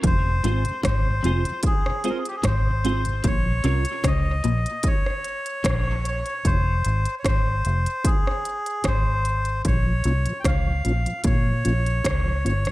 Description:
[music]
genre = dub reggae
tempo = 75 BPM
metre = 4/4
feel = straight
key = F minor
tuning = A4 = 440 Hz
[part]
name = electric guitar at the edge of break-up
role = riff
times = 0.0-5.9 s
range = F2 to Db3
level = -30 LUFS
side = left 2 dB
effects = ensemble chorus, tape echo
[part]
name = vintage muted fingered electric bass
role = bass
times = 0.0-12.7 s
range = F1 to Bb2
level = -23 LUFS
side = equal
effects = none
[part]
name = industrial drum kit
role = drums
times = 0.0-12.7 s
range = hi-hat, kick drum, rim click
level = -24 LUFS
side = equal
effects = none
[part]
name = melodica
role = melody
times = 0.1-12.7 s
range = G4 to G5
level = -27 LUFS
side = left 1 dB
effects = tape echo
[part]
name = mellow tonewheel organ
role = accompaniment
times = 0.2-3.5, 9.9-12.7 s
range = F2 to F4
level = -30 LUFS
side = left 1 dB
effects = chorus vibrato, stopped rotary speaker
[part]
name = clean electric guitar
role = accompaniment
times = 0.4-3.8 s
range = C4 to Db5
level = -30 LUFS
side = right 5 dB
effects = ensemble chorus, tape echo
[sound]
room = light reverb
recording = none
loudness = -20 LUFS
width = side -18 dB against mid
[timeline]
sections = 0.0-12.7 A section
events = none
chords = 0.0 Fm; 3.2 Bbm; 6.4 Fm; 9.6 Bbm

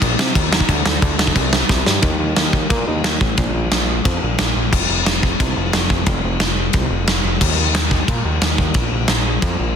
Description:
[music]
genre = punk rock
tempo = 178 BPM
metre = 4/4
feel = straight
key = unclear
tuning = A4 = 440 Hz
[part]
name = fat analog bass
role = bass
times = 0.0-9.7 s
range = F1 to C3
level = -20 LUFS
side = equal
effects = none
[part]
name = big rock drum kit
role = drums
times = 0.0-9.5 s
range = crash cymbal, kick drum, ride cymbal, snare drum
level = -16 LUFS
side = equal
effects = soft clipping on kick
[sound]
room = little or no reverb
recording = dense, heavily limited modern master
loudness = -15 LUFS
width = side -7 dB against mid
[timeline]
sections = 0.0-2.0 A section; 2.0-9.8 B section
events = drum fill 1.7-2.0; half time 2.0-9.8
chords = none

